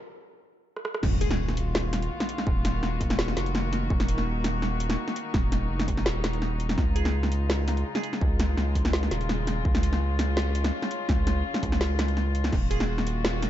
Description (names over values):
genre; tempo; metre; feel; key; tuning
half-time drum and bass; 167 BPM; 4/4; half-time; Eb minor; A4 = 440 Hz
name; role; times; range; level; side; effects
drum and bass drum kit; drums; 0.8-13.5 s; crash cymbal, hi-hat, rim click, snare drum; -30 LUFS; equal; high-pass filter on snare, high-pass filter on hats, high-pass filter on cymbals, high-pass filter on room
warm chamber string section; sustained chords; 1.0-13.5 s; Db3 to Gb4; -33 LUFS; left 2 dB; sidechain pumping
saturated sub bass; bass; 1.0-13.5 s; Eb1 to Db2; -27 LUFS; equal; none
electronic kick drum; drums; 1.0-12.6 s; none; -27 LUFS; equal; distortion
impact; sound effects; 1.0-2.5 s; none; -34 LUFS; equal; none
glassy wavetable pluck; melody; 1.2-1.6, 7.0-8.3, 12.7-13.1 s; Ab4; -37 LUFS; right 1 dB; chorus, analog delay
room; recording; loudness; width
light reverb, digital ambience; nothing above 7.8 kHz; -24 LUFS; side -12 dB against mid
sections
0.0-1.0 A section; 1.0-13.5 B section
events
break 0.0-1.0; build-up 0.0-1.0; drum fill 0.8; drop 1.0-13.5; impact 1.0-2.5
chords
0.0 N.C.; 1.0 Ebm; 6.8 Db; 12.5 Ebm